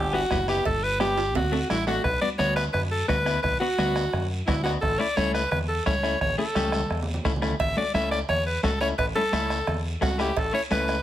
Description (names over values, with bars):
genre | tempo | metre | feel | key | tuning
latin, cumbia | 173 BPM | 4/4 | straight | unclear | A4 = 440 Hz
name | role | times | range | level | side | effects
edgy alto saxophone | melody | 0.0-11.0 s | E4 to E5 | -26 LUFS | equal | plate reverb
fingered electric bass | bass | 0.0-11.0 s | F#1 to F#2 | -30 LUFS | equal | none
clean electric guitar | accompaniment | 0.1-11.0 s | A3 to G4 | -30 LUFS | left 4 dB | none
bombo | percussion | 0.3-11.0 s | none | -31 LUFS | right 2 dB | none
congas | percussion | 0.3-10.9 s | none | -34 LUFS | right 1 dB | none
guiro | percussion | 0.3-11.0 s | none | -38 LUFS | right 2 dB | none
cowbell and timbales | percussion | 0.7-2.0, 7.6-10.5 s | none | -33 LUFS | right 6 dB | none
room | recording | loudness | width
moderate studio reverb, RT60 0.8 s | none | -22 LUFS | side -12 dB against mid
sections
0.0-2.0 A section; 2.0-11.0 B section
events
drum fill 1.0-2.0, 6.6-7.6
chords
0.0 Em; 0.7 G; 1.4 D; 2.0 Bm; 4.8 A